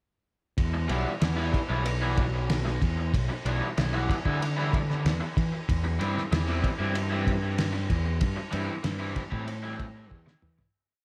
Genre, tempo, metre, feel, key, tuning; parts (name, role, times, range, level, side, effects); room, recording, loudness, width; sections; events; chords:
psychedelic rock; 94 BPM; 4/4; straight; E minor; A4 = 438 Hz
fuzz picked electric bass; bass; 0.6-10.6 s; B1 to E3; -32 LUFS; equal; overdrive
cloth-damped thuddy drum kit; drums; 0.6-10.7 s; kick drum, ride cymbal, snare drum, toms; -32 LUFS; equal; tape echo
raw garage guitar; riff; 0.7-10.3 s; E3 to E4; -35 LUFS; equal; overdrive, flanger, tape echo
small room ambience; echo-heavy mix; -28 LUFS; mono
0.6-10.7 groove
fade-out 8.2-10.7; drum fill 10.1-10.7
0.6 Em; 5.7 C/E